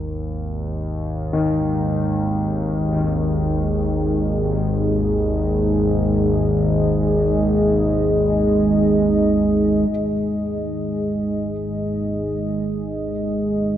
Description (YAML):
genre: dark ambient drone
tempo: free time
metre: none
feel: none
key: unclear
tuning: A4 = 440 Hz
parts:
  - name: analog drone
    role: drone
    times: 0.0-13.8 s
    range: G#1 to D#2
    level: -22 LUFS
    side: equal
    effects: chorus
  - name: dark analog pad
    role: sustained chords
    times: 2.0-13.8 s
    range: G#3 to D#5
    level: -20 LUFS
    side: right 1 dB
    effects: chorus
  - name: warm baby grand piano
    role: arpeggios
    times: 1.3-9.9 s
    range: D#3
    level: -26 LUFS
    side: left 2 dB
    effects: diffuse ambient delay
room: wet cathedral reverb, RT60 6.3 s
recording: worn, warbling old tape, cassette tape, warbly pitch drift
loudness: -18 LUFS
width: side -11 dB against mid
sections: 0.0-9.9 A section; 9.9-13.8 B section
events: none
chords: 0.0 G#5